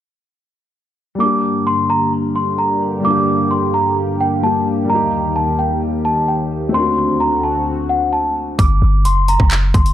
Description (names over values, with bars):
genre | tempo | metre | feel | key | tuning
hip hop, trap | 130 BPM | 4/4 | half-time | G harmonic minor | A4 = 439 Hz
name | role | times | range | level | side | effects
celesta | melody | 1.2-9.9 s | F#5 to D6 | -18 LUFS | equal | low-pass filter, tape echo
dark grand piano | accompaniment | 1.2-8.6 s | G3 to G4 | -20 LUFS | left 2 dB | low-pass filter
sweeping resonant pad | sustained chords | 1.2-8.6 s | D2 to G4 | -21 LUFS | equal | chorus
warm 808-style bass | bass | 8.6-9.9 s | F#1 to G1 | -14 LUFS | equal | none
trap drum kit | drums | 8.6-9.9 s | handclaps, hi-hat, kick drum, rim click | -14 LUFS | equal | overdrive
room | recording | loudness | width
light reverb, digital ambience | dark, warm production | -14 LUFS | side -11 dB against mid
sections
1.2-8.6 A section; 8.6-9.9 B section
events
none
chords
1.2 Gm; 4.9 Eb; 6.7 D7; 8.6 G5